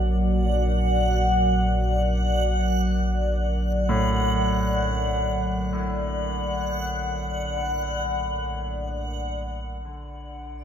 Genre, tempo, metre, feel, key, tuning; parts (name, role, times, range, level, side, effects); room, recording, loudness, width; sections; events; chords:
dark ambient drone; free time; A4 = 440 Hz
dark analog pad; sustained chords; 0.0-10.6 s; F#3 to D5; -28 LUFS; left 1 dB; chorus
clear concert grand piano; arpeggios; 0.0-10.6 s; A2 to D4; -31 LUFS; equal; analog delay
deep rumbling drone; drone; 0.0-10.6 s; Bb1 to D3; -26 LUFS; equal; built-in reverb, lush chorus
backwards swelling texture; texture; 0.0-10.6 s; D5 to F#5; -28 LUFS; equal; built-in reverb
wet spring reverb, RT60 2.5 s; echo-heavy mix; -22 LUFS; side -9 dB against mid
0.0-9.8 A section
0.0 Bbmaj7#5; 9.8 Bb